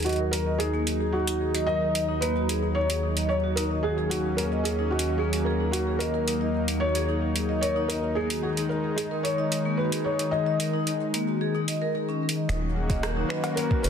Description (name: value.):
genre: IDM.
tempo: 111 BPM.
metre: 4/4.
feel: straight.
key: unclear.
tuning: A4 = 443 Hz.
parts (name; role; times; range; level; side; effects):
felt-muted upright piano; melody; 0.0-13.9 s; F#4 to D#5; -29 LUFS; equal; digital delay.
warm analog pad; sustained chords; 0.0-13.9 s; D#2 to Gb4; -28 LUFS; left 1 dB; chorus.
vibraphone with soft mallets; arpeggios; 0.0-13.9 s; Bb3 to D#5; -31 LUFS; equal; low-pass filter, digital delay.
booming analog drum machine; drums; 0.0-13.9 s; cowbell, finger snaps, hi-hat, rim click, shaker; -32 LUFS; right 1 dB; soft clipping on snare.
deep acid bass; bass; 12.5-13.9 s; Eb1 to Gb1; -28 LUFS; equal; none.
electronic kick drum; drums; 12.9-13.8 s; none; -25 LUFS; equal; none.
room: moderate lush hall reverb, RT60 1.9 s.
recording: dense, heavily limited modern master.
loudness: -24 LUFS.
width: side -7 dB against mid.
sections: 0.0-12.5 A section; 12.5-13.9 B section.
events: none.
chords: 0.0 B/D# (rootless); 3.8 Gb/Eb.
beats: 0.06 0.60 1.14 | 1.68 2.22 2.76 3.30 | 3.84 4.38 4.92 5.46 | 6.00 6.54 7.09 7.63 | 8.17 8.71 9.25 9.79 | 10.33 10.87 11.41 11.95 | 12.49 13.03 13.57.